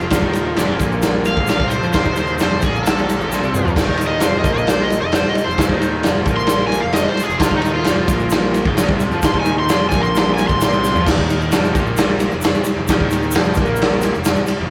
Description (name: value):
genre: garage rock duo or trio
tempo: 132 BPM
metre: 4/4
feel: straight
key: F mixolydian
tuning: A4 = 440 Hz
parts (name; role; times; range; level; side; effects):
- overdriven slide guitar; melody; 0.0-11.1 s; Eb4 to C6; -24 LUFS; equal; none
- combo organ; sustained chords; 0.0-11.0 s; F4 to C5; -31 LUFS; equal; none
- overdriven electric guitar; riff; 0.0-14.7 s; F2 to F4; -26 LUFS; equal; none
- fuzz picked electric bass; bass; 0.0-14.7 s; F1 to F2; -27 LUFS; equal; overdrive, tube saturation
- egg shaker; percussion; 0.0-14.6 s; none; -36 LUFS; equal; none
- raw garage drum kit; drums; 0.1-14.6 s; crash cymbal, kick drum, ride cymbal, snare drum, toms; -19 LUFS; equal; none
room: light reverb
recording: rough rehearsal-room recording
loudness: -17 LUFS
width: mono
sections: 0.0-11.0 A section; 11.0-14.7 B section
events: electric slide guitar solo 0.0-11.0; drum fill 3.3-3.8, 10.8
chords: 0.0 F; 11.0 N.C.